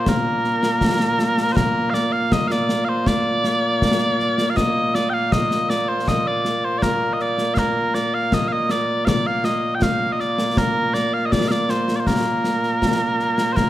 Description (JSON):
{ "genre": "scottish traditional, Scottish pipe music", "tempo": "80 BPM", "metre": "2/4", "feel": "straight", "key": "Bb major", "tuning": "A4 = 439 Hz", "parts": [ { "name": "mellow small bagpipes", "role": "melody", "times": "0.0-13.7 s", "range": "Bb2 to G5", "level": "-19 LUFS", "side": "equal", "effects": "none" }, { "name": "concert snare drum and concert bass drum", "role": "drums", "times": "0.1-13.7 s", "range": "none", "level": "-23 LUFS", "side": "left 1 dB", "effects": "none" } ], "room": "moderate recital hall reverb, RT60 1.5 s", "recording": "none", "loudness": "-18 LUFS", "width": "side -13 dB against mid", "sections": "0.0-1.6 A section; 1.6-13.6 B section", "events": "none", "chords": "none" }